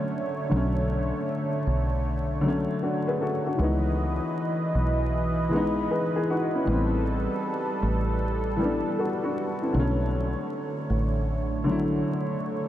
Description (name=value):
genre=lo-fi hip hop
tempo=78 BPM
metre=4/4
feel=swing 65% on 16ths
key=unclear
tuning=A4 = 441 Hz
part: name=dark upright piano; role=accompaniment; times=0.0-12.7 s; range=D3 to B4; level=-28 LUFS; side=left 2 dB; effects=none
part: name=warm analog pad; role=sustained chords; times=0.0-12.7 s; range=D3 to D#5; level=-29 LUFS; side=right 1 dB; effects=wide subtle chorus
part: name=deep dub fingered electric bass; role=bass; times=0.5-12.0 s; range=A1 to C#2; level=-27 LUFS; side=equal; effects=none
room=moderate huge ambient reverb, RT60 7.7 s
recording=dreamy mix soaked in reverb, vinyl crackle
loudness=-24 LUFS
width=side -12 dB against mid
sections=0.0-12.7 A section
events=none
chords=0.0 Bm9; 3.6 C#m9; 6.7 Am9; 9.7 Bm9